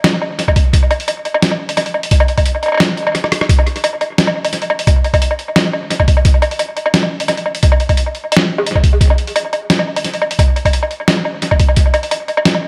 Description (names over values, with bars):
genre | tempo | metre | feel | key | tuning
drum and bass | 174 BPM | 4/4 | half-time | none | none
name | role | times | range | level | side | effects
boom bap sampler-style drum kit | drums | 0.0-12.6 s | hi-hat, rim click, snare drum, woodblock | -17 LUFS | equal | analog delay
electronic kick drum | drums | 0.5-11.8 s | none | -14 LUFS | equal | none
room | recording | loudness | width
light reverb, digital ambience | echo-heavy mix | -14 LUFS | mono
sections
0.0-12.7 A section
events
kick drops out 2.8-3.5; drum fill 3.1-3.5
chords
none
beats
0.04 0.39 | 0.73 1.08 1.42 1.77 | 2.11 2.46 2.80 3.15 | 3.49 3.84 4.18 4.53 | 4.87 5.22 5.56 5.91 | 6.25 6.60 6.94 7.29 | 7.63 7.97 8.32 8.66 | 9.01 9.35 9.70 10.04 | 10.39 10.73 11.08 11.42 | 11.77 12.11 12.46